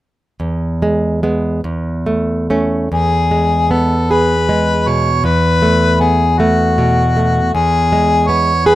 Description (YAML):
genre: romantic duo for harmonica and classical guitar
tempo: 45-54 BPM (dotted quarters)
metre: 6/8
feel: rubato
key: E major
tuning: A4 = 440 Hz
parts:
  - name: nylon-string guitar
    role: accompaniment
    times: 0.4-8.8 s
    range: E2 to G#4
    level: -14 LUFS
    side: right 1 dB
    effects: none
  - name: clear harmonica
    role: melody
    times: 2.9-8.8 s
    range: F#4 to C#5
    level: -15 LUFS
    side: left 2 dB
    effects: none
room: light reverb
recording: rough home demo mix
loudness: -12 LUFS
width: side -15 dB against mid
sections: 0.4-2.9 A section; 2.9-8.8 B section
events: none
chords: 0.4 E; 1.6 A/E; 2.9 E; 5.2 B5/E; 7.5 E